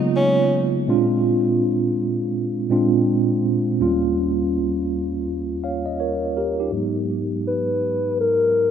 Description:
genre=R&B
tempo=82 BPM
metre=4/4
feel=swing 61% on 16ths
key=G# dorian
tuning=A4 = 440 Hz
part: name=mellow tine electric piano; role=accompaniment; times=0.0-8.7 s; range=D#2 to E#5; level=-19 LUFS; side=right 1 dB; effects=medium stereo tremolo, low-pass filter
part: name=breathy tenor saxophone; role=melody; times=0.2-0.7, 7.5-8.7 s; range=C#4 to B4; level=-20 LUFS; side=left 1 dB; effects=low-pass filter
room=wet lush hall reverb, RT60 2.4 s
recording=rough home demo mix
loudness=-18 LUFS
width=side -8 dB against mid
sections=0.0-6.7 A section; 6.7-8.7 B section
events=filter sweep 6.7-8.7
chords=0.0 C#13sus4; 0.9 A#9; 3.8 D#9; 6.7 G#m9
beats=0.14 | 0.87 1.60 2.33 3.07 | 3.80 4.53 5.26 5.99 | 6.72 7.46 8.19

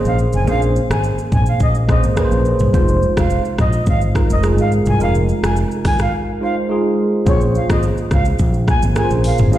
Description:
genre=afrobeats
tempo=106 BPM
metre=4/4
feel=straight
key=Bb minor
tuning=A4 = 440 Hz
part: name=tine electric piano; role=accompaniment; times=0.0-9.6 s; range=Ab3 to C5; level=-19 LUFS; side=right 1 dB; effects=phaser
part: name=afro-pop drum kit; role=drums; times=0.0-9.6 s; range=hi-hat, kick drum, rim click, shaker, toms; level=-18 LUFS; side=equal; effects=none
part: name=reedy jazz flute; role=melody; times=0.1-9.6 s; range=Db5 to Ab5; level=-23 LUFS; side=right 1 dB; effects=ping-pong delay
part: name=fingered electric bass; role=bass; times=0.1-9.6 s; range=F1 to Db2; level=-17 LUFS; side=equal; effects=none
room=light reverb, digital ambience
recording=played on a big sound system in a bare room, large studio reverb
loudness=-14 LUFS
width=side -13 dB against mid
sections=0.0-7.3 A section; 7.3-9.6 B section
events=none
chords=0.0 Bbm9; 2.7 Fm7; 7.3 Bbm9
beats=| 0.47 1.04 1.60 2.17 | 2.74 3.30 3.87 4.44 | 5.00 5.57 6.13 6.70 | 7.27 7.83 8.40 8.96 | 9.53

